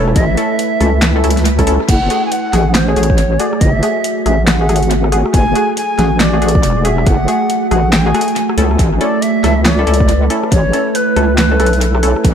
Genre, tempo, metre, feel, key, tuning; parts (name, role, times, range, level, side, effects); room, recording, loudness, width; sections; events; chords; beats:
deep dubstep; 139 BPM; 4/4; swing 62% on 16ths, half-time; F# minor; A4 = 440 Hz
bright reedy long shakuhachi; melody; 0.0-12.2 s; A4 to G#5; -18 LUFS; equal; dub echo
deep dark ambient pad; sustained chords; 0.0-12.3 s; A3 to E5; -19 LUFS; right 2 dB; chorus, built-in reverb
filtered dub chord stab; stabs; 0.0-12.3 s; A3 to A4; -19 LUFS; left 2 dB; chorus, tape echo
wobble bass; bass; 0.0-12.3 s; E1 to C#2; -14 LUFS; equal; chorus
deep house drum kit; drums; 0.1-12.3 s; crash cymbal, handclaps, hi-hat, rim click, snare drum; -18 LUFS; equal; studio reverb, tape echo
electronic kick drum; drums; 0.2-12.3 s; -13 LUFS; equal; studio reverb
light reverb; echo-heavy mix; -11 LUFS; side -8 dB against mid
0.0-12.3 A section
0.0 A; 1.9 F#madd9; 8.8 A
| 0.16 0.59 1.02 1.45 | 1.89 2.32 2.75 3.18 | 3.61 4.04 4.47 4.91 | 5.34 5.77 6.20 6.63 | 7.07 7.50 7.93 8.36 | 8.79 9.22 9.65 10.09 | 10.52 10.95 11.38 11.81 | 12.24